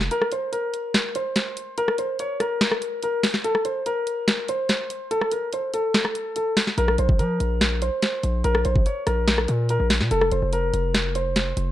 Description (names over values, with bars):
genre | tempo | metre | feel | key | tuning
hip hop, trap | 144 BPM | 4/4 | half-time | Bb harmonic minor | A4 = 444 Hz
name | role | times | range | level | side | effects
distorted 808-style bass | bass | 0.0-0.1, 6.8-11.7 s | F1 to F3 | -23 LUFS | equal | distortion
trap drum kit | drums | 0.0-11.7 s | hi-hat, kick drum, rim click, snare drum | -22 LUFS | equal | vintage 12-bit sampler grit
clear concert grand piano | melody | 0.1-11.7 s | A4 to Db5 | -25 LUFS | left 1 dB | low-pass filter, ping-pong delay
room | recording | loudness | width
light reverb, digital ambience | dark, warm production | -21 LUFS | side -13 dB against mid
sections
0.0-11.7 A section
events
kick muted 0.1-6.8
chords
0.1 N.C.; 6.8 Bb5; 10.1 F5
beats
| 0.11 0.53 0.94 1.36 | 1.78 2.19 2.61 3.03 | 3.44 3.86 4.28 4.69 | 5.11 5.53 5.94 6.36 | 6.78 7.19 7.61 8.03 | 8.44 8.86 9.28 9.69 | 10.11 10.53 10.94 11.36